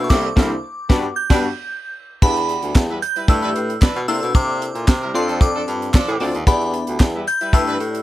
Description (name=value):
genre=early-eighties boogie funk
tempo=113 BPM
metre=4/4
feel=straight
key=unclear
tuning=A4 = 440 Hz
part: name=glassy synth bell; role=melody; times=0.0-8.0 s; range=B5 to G6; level=-24 LUFS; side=equal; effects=chorus, phaser
part: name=funky polysynth comp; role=accompaniment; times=0.0-8.0 s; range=A3 to D5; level=-24 LUFS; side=left 2 dB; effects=chorus
part: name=breathy baritone saxophone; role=bass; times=0.0-8.0 s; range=C2 to C3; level=-23 LUFS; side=equal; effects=none
part: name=warm horn section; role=second line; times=0.1-7.8 s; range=E3 to B4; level=-28 LUFS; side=equal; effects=none
part: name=tight funk drum kit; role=drums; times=0.1-8.0 s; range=crash cymbal, handclaps, hi-hat, kick drum, snare drum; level=-15 LUFS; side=equal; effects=none
part: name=group handclap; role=percussion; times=2.8-7.1 s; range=none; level=-31 LUFS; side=right 1 dB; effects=none
room=little or no reverb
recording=none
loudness=-16 LUFS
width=side -15 dB against mid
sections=0.0-2.2 A section; 2.2-8.0 A section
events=band accent 0.1-2.2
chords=0.0 C13; 0.9 Gmaj7; 2.2 Em7; 3.3 G69; 4.1 C13; 5.1 F6; 6.5 Em7